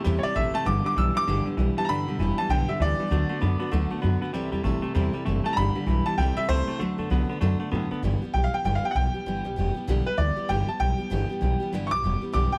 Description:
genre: rockabilly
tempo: 195 BPM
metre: 4/4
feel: swing 62% on 8ths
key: G major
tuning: A4 = 440 Hz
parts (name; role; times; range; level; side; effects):
- picked steel-string acoustic guitar; accompaniment; 0.0-12.6 s; G2 to A4; -33 LUFS; equal; none
- semi-hollow electric guitar; riff; 0.0-8.0 s; G2 to B3; -32 LUFS; equal; none
- upright bass; bass; 0.1-12.6 s; F1 to A2; -28 LUFS; equal; none
- bright upright piano; melody; 0.2-12.6 s; B4 to E6; -30 LUFS; equal; none
room: light reverb, small room ambience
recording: none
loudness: -26 LUFS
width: mono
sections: 0.0-8.0 A section; 8.0-12.6 B section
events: upright piano solo 8.0-12.6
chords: 0.0 C6; 0.7 G6; 3.1 D6; 4.3 C6; 5.6 G6; 6.2 C6; 6.8 D6; 8.0 G6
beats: 0.04 0.35 | 0.66 0.96 1.27 1.58 | 1.89 2.19 2.50 2.81 | 3.11 3.42 3.73 4.03 | 4.34 4.65 4.95 5.26 | 5.57 5.88 6.18 6.49 | 6.80 7.11 7.41 7.72 | 8.03 8.34 8.64 8.95 | 9.26 9.57 9.87 10.18 | 10.49 10.80 11.11 11.41 | 11.72 12.03 12.34

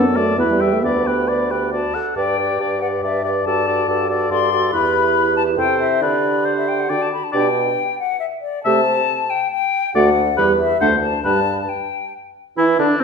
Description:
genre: quick classical-period movement for wind quintet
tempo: 138 BPM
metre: 3/4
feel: straight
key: G major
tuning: A4 = 440 Hz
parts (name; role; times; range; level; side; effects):
- silver concert flute; melody; 0.0-13.0 s; C4 to C6; -22 LUFS; left 9 dB; none
- warm oboe; second line; 0.0-13.0 s; C4 to F#5; -21 LUFS; left 3 dB; none
- clear French horn; accompaniment; 0.0-13.0 s; G3 to G4; -23 LUFS; equal; none
- mellow clarinet; accompaniment; 0.0-13.0 s; C4 to B4; -23 LUFS; right 7 dB; none
- mellow bassoon; bass; 0.0-13.0 s; D2 to E3; -23 LUFS; right 4 dB; none
room: wet recital hall reverb, RT60 1.3 s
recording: recorded in a church or concert hall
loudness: -16 LUFS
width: side -5 dB against mid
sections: 0.0-2.2 A section; 2.2-12.6 B section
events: none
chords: 0.4 Em; 0.8 G/D; 1.7 D; 2.2 G; 3.5 D/G; 4.7 Em; 5.6 Am7/C; 6.0 G/D; 6.9 D; 7.3 G/B; 8.7 Am7/C; 9.9 D; 10.4 Em; 10.8 D7(no3); 11.2 N.C.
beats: 0.38 | 0.82 1.27 1.72 | 2.16 2.59 3.02 | 3.46 3.88 4.31 | 4.73 5.16 5.59 | 6.02 6.46 6.90 | 7.34 7.77 8.21 | 8.65 9.09 9.52 | 9.95 10.38 10.81 | 11.24 11.69 12.13 | 12.58 13.01

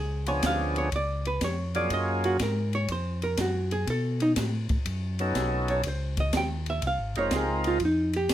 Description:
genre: soul jazz organ trio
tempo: 122 BPM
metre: 4/4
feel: swing 68% on 8ths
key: unclear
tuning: A4 = 442 Hz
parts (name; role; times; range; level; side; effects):
- archtop guitar, miked and amplified; accompaniment; 0.0-8.3 s; D#4 to G5; -29 LUFS; right 1 dB; none
- mellow tonewheel organ; bass; 0.0-8.3 s; F1 to B2; -30 LUFS; equal; overdrive, chorus vibrato, slow rotary speaker
- percussive tonewheel organ; melody; 0.3-7.8 s; F3 to Bb4; -29 LUFS; equal; slow rotary speaker, overdrive
- open jazz drum kit; drums; 0.3-8.3 s; hi-hat, kick drum, ride cymbal, snare drum; -33 LUFS; equal; none
room: light reverb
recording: none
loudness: -25 LUFS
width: side -12 dB against mid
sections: 0.0-8.3 A section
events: hollow-body jazz guitar solo 0.0-8.3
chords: 0.0 Db7b9; 1.9 Gbmaj9; 3.9 B9; 5.8 Dbmaj13; 7.8 F7(no3)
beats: 0.43 0.93 1.42 | 1.91 2.40 2.90 3.39 | 3.88 4.37 4.86 5.36 | 5.85 6.34 6.83 7.32 | 7.81 8.30

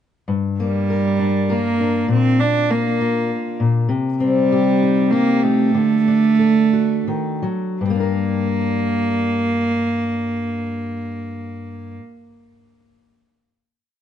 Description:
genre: acoustic folk-pop ballad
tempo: 80-100 BPM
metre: 3/4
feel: straight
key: G minor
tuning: A4 = 441 Hz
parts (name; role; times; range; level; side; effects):
- fingerpicked steel-string acoustic guitar; accompaniment; 0.3-12.2 s; G2 to Bb4; -20 LUFS; left 4 dB; none
- rich cello; second line; 0.6-11.9 s; G3 to D4; -19 LUFS; right 4 dB; none
room: moderate plate reverb, RT60 3.4 s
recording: dark, warm production, nothing above 10.5 kHz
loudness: -16 LUFS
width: side -9 dB against mid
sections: 0.3-7.8 interlude; 7.8-12.3 final chord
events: cello solo 0.3-7.8; slowing down 3.9-7.8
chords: 0.3 Gm; 2.1 Bb; 3.9 Cm; 5.7 D; 7.8 Gm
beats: | 0.30 0.90 1.51 | 2.11 2.71 3.30 | 3.90 4.50 5.11 | 5.74 6.40 7.08 | 7.81 8.56 9.30 | 10.04 10.79 11.53

